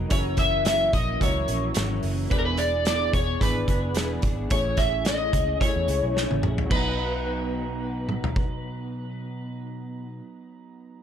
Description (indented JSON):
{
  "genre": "indie pop, bedroom pop",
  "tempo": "109 BPM",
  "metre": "4/4",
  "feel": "swing 55% on 16ths",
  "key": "B major",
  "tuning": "A4 = 440 Hz",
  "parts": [
    { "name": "electric guitar at the edge of break-up", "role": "accompaniment", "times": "0.0-10.3 s", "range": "F#2 to G#4", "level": "-33 LUFS", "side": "left 3 dB", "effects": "ensemble chorus, warbly pitch drift" },
    { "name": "warbly lo-fi synth keys", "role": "accompaniment", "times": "0.0-11.0 s", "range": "F#3 to A#5", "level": "-34 LUFS", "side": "right 5 dB", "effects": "chorus, cassette tape" },
    { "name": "vintage muted picked electric bass", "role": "bass", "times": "0.0-9.9 s", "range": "E1 to E2", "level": "-29 LUFS", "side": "equal", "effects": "none" },
    { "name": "electric slide guitar", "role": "melody", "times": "0.1-9.7 s", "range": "A#4 to E5", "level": "-27 LUFS", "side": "left 1 dB", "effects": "wide subtle chorus, tape echo" },
    { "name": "loose indie drum kit", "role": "drums", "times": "0.1-8.5 s", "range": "crash cymbal, hi-hat, kick drum, snare drum, toms", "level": "-27 LUFS", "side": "equal", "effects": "none" }
  ],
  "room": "light reverb",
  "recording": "none",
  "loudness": "-22 LUFS",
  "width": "side -9 dB against mid",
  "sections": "0.0-6.7 A section; 6.7-8.9 B section",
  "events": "drum fill 6.2-6.7",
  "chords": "0.1 F#7; 2.3 E7; 4.5 Amaj7; 6.7 Bmaj7",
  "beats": "| 0.11 0.66 1.21 1.76 | 2.31 2.86 3.41 3.96 | 4.51 5.06 5.61 6.16 | 6.71 7.26 7.81 8.36"
}